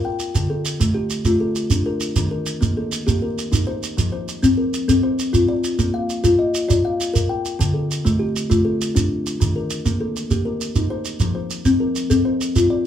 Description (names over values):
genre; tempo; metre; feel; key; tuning
southern african traditional, mbira-style interlocking cycle; 133 BPM (dotted quarters); 12/8; straight; F mixolydian; A4 = 439 Hz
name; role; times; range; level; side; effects
kalimba; arpeggios; 0.0-12.9 s; D3 to G5; -20 LUFS; left 2 dB; none
shekere; percussion; 0.2-12.7 s; none; -21 LUFS; right 2 dB; none
room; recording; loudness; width
wet small room reverb, RT60 0.5 s; heard from further back in the room; -18 LUFS; side -10 dB against mid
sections
0.0-4.0 A section; 4.0-12.9 B section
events
none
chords
0.3 Dm; 2.2 Eb; 4.0 F; 5.8 Bb; 7.6 Dm; 9.4 Eb; 11.2 F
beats
| 0.34 0.80 1.25 1.71 | 2.16 2.62 3.07 3.52 | 3.98 4.43 4.88 5.34 | 5.79 6.24 6.69 7.15 | 7.60 8.05 8.50 8.95 | 9.40 9.86 10.31 10.76 | 11.21 11.66 12.11 12.55